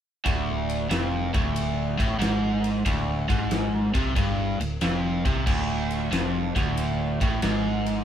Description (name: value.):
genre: blues rock power trio and southern rock.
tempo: 92 BPM.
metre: 4/4.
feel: swing 67% on 8ths.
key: unclear.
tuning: A4 = 440 Hz.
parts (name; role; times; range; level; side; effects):
overdriven electric guitar; riff; 0.2-8.0 s; D2 to C3; -25 LUFS; right 1 dB; none.
vintage muted fingered electric bass; bass; 0.3-8.0 s; D1 to C2; -30 LUFS; equal; none.
big rock drum kit; drums; 0.3-8.0 s; crash cymbal, kick drum, ride cymbal, snare drum; -28 LUFS; equal; none.
room: light reverb.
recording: band playing live in one room.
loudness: -23 LUFS.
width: side -9 dB against mid.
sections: 0.3-8.0 A section.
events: none.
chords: 0.3 D5.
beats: | 0.26 0.91 1.56 2.21 | 2.86 3.51 4.16 4.81 | 5.46 6.11 6.76 7.41.